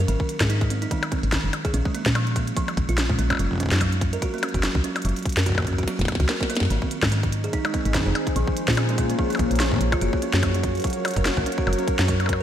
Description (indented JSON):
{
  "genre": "IDM",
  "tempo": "145 BPM",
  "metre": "4/4",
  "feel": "swing 56% on 16ths",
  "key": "Gb lydian",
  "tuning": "A4 = 440 Hz",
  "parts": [
    { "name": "buzzing kalimba", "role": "arpeggios", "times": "0.0-12.4 s", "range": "Eb3 to Bb4", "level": "-28 LUFS", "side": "right 3 dB", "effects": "ping-pong delay" },
    { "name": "woody FM bass", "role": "bass", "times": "0.0-12.4 s", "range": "Gb1 to Bb2", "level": "-23 LUFS", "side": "equal", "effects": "none" },
    { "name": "glitchy drum kit", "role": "drums", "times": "0.1-12.4 s", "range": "hi-hat, percussion blips, snare drum", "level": "-27 LUFS", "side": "left 1 dB", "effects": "ping-pong delay" },
    { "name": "electronic kick drum", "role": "drums", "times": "0.2-12.4 s", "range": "none", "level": "-27 LUFS", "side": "equal", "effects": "none" },
    { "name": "warbly tape-like pad", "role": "sustained chords", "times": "6.7-12.4 s", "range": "Bb3 to Db5", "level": "-27 LUFS", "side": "left 1 dB", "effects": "chorus, built-in reverb, sidechain pumping" }
  ],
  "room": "moderate lush hall reverb, RT60 1.9 s, digital ambience",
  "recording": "bright 1980s-style digital production",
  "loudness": "-20 LUFS",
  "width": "side -10 dB against mid",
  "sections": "0.0-12.4 A section",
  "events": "drum fill 5.9-6.7",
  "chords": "0.1 Ab5; 1.7 N.C.; 3.4 Gb5; 6.7 Ab; 8.4 Bbm7; 10.0 Gb",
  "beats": "| 0.08 0.50 0.91 1.32 | 1.74 2.15 2.57 2.98 | 3.39 3.81 4.22 4.63 | 5.05 5.46 5.88 6.29 | 6.70 7.12 7.53 7.95 | 8.36 8.77 9.19 9.60 | 10.01 10.43 10.84 11.26 | 11.67 12.08"
}